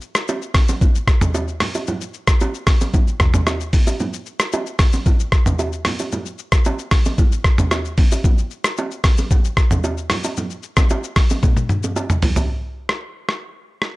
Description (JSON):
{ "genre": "afrobeats", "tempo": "113 BPM", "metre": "4/4", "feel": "straight", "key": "none", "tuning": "none", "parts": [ { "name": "boom bap sampler-style drum kit", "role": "drums", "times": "0.0-13.9 s", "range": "hi-hat, kick drum, rim click, shaker, toms", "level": "-16 LUFS", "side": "equal", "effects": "none" }, { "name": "bongos and congas", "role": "percussion", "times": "0.3-12.5 s", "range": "none", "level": "-24 LUFS", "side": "right 2 dB", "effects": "none" } ], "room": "little or no reverb", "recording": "dark, warm production", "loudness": "-16 LUFS", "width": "side -21 dB against mid", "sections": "0.0-12.5 A section; 12.5-14.0 B section", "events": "break 4.0-4.5; drum fill 11.4-12.5", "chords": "none", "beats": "0.28 0.81 1.34 | 1.87 2.40 2.93 3.46 | 4.00 4.53 5.06 5.59 | 6.12 6.65 7.18 7.71 | 8.24 8.77 9.30 9.84 | 10.37 10.90 11.43 11.96 | 12.49 13.02 13.55" }